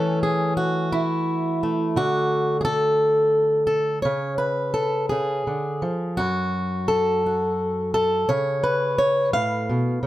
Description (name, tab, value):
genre	folk, solo fingerstyle acoustic guitar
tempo	57 BPM (dotted quarters)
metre	6/8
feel	rubato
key	unclear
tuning	A4 = 440 Hz
part	fingerpicked plugged-in swing-style acoustic guitar	solo	0.0-10.1 s	F#2 to E#5	-20 LUFS	equal	slapback echo
room	light reverb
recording	none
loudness	-20 LUFS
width	side -14 dB against mid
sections	0.0-10.1 A section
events	none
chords	0.0 A6/E; 2.0 D; 4.0 C#; 6.2 N.C.; 8.3 C#